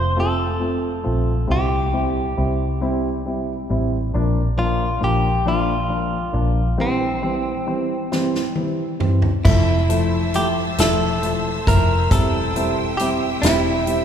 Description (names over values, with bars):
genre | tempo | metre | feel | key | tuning
six-eight pop ballad | 45 BPM (dotted quarters) | 6/8 | straight | F major | A4 = 439 Hz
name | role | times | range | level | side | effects
direct-recorded clean electric guitar | melody | 0.0-14.0 s | C4 to C5 | -24 LUFS | equal | none
vintage muted fingered electric bass | bass | 0.0-14.0 s | E1 to C2 | -22 LUFS | equal | none
dark upright piano | accompaniment | 0.2-14.0 s | E3 to F4 | -22 LUFS | equal | none
natural country drum kit | drums | 8.1-14.0 s | crash cymbal, hi-hat, kick drum, snare drum, toms | -20 LUFS | equal | none
bright studio string section | sustained chords | 9.4-14.0 s | C5 to E6 | -29 LUFS | right 1 dB | none
room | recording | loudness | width
wet church reverb, RT60 3.4 s | recorded in a church or concert hall | -18 LUFS | side -8 dB against mid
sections
0.0-9.5 A section; 9.5-14.0 B section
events
drum fill 8.1-9.5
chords
0.0 F; 1.5 C; 4.1 Bb; 6.8 C; 9.5 Fmaj7; 12.1 C/E